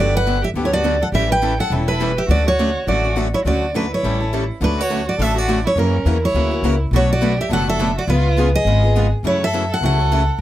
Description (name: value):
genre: acoustic string swing (jazz manouche)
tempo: 207 BPM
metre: 4/4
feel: swing 58% on 8ths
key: D major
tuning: A4 = 440 Hz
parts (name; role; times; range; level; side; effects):
- picked steel-string acoustic guitar; melody; 0.0-10.4 s; A#4 to G5; -20 LUFS; right 1 dB; none
- warm violin; second line; 0.0-10.4 s; C#4 to B4; -25 LUFS; right 4 dB; none
- picked steel-string acoustic guitar; accompaniment; 0.0-10.2 s; B2 to B4; -26 LUFS; right 4 dB; none
- picked swing-style acoustic guitar; accompaniment; 0.0-10.2 s; B2 to A4; -24 LUFS; left 5 dB; none
- upright bass; bass; 0.0-10.4 s; E1 to F#2; -19 LUFS; equal; none
room: little or no reverb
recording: close, detailed microphones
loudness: -15 LUFS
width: side -13 dB against mid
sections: 0.0-4.6 A section; 4.6-10.4 B section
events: none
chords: 0.0 Gmaj7; 1.1 A9; 2.3 Dmaj7; 4.0 A7; 4.6 Dmaj7; 5.8 F#7; 6.9 Bm7; 8.1 C#7; 9.2 F#m7